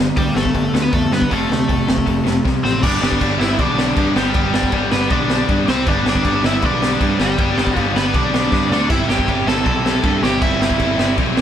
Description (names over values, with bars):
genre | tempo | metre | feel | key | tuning
punk rock | 158 BPM | 4/4 | straight | G mixolydian | A4 = 440 Hz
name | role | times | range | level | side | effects
sludgy distorted guitar | riff | 0.0-11.4 s | F2 to D4 | -23 LUFS | right 8 dB | overdrive
tight distorted guitar | riff | 0.0-11.4 s | C3 to A4 | -22 LUFS | left 8 dB | distortion
growling picked electric bass | bass | 0.0-11.4 s | F1 to G2 | -23 LUFS | equal | overdrive
cranked stack guitar | melody | 0.2-11.1 s | G3 to A5 | -21 LUFS | equal | overdrive
raw garage drum kit | drums | 0.2-11.4 s | crash cymbal, hi-hat, kick drum, snare drum, splash cymbal | -19 LUFS | equal | none
room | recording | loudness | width
light reverb | band playing live in one room | -14 LUFS | side -9 dB against mid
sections
0.0-2.8 A section; 2.8-11.4 B section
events
drum fill 2.4-2.8, 8.5-8.9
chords
0.0 G; 1.3 F; 2.8 G; 5.7 C5; 5.9 G; 8.7 D5; 8.9 C/G